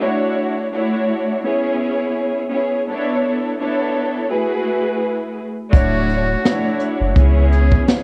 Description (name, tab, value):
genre	hip hop, boom-bap hip-hop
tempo	84 BPM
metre	4/4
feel	swing 56% on 16ths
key	unclear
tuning	A4 = 441 Hz
part	warm studio string section	accompaniment	0.0-8.0 s	A3 to C#5	-21 LUFS	equal	cassette tape, high-pass filter, low-pass filter
part	trumpet with metal mute	melody	5.7-7.8 s	F#4 to G#4	-28 LUFS	equal	high-pass filter, low-pass filter, cassette tape, tape echo
part	soft dub sub bass	bass	5.7-7.8 s	D1 to C#2	-18 LUFS	equal	none
part	jazz brush drum kit	drums	5.7-8.0 s	hi-hat, kick drum, snare drum	-17 LUFS	equal	cassette tape
room	small room ambience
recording	home recording on cassette, faint mains hum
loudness	-18 LUFS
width	mono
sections	0.0-8.0 A section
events	none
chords	0.0 Dmaj9; 1.4 C#m7; 2.9 Bm11; 4.3 F#m11; 5.7 Dmaj9; 7.2 C#m7